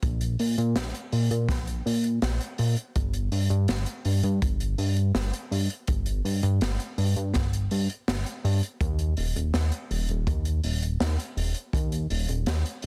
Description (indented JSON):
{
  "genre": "synthwave",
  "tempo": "82 BPM",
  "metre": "4/4",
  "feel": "straight",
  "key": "unclear",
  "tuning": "A4 = 441 Hz",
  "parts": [
    { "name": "chorused synth bass", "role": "bass", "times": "0.0-12.9 s", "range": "Eb1 to Bb2", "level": "-27 LUFS", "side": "equal", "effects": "none" },
    { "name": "kick drum", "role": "drums", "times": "0.0-11.9 s", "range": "none", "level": "-31 LUFS", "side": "equal", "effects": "none" },
    { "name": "open jazz drum kit", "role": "drums", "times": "0.0-12.9 s", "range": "hi-hat, snare drum", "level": "-35 LUFS", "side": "equal", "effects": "none" }
  ],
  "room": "little or no reverb",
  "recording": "dense, heavily limited modern master",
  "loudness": "-27 LUFS",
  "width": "mono",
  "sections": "0.0-12.9 A section",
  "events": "none",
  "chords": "none"
}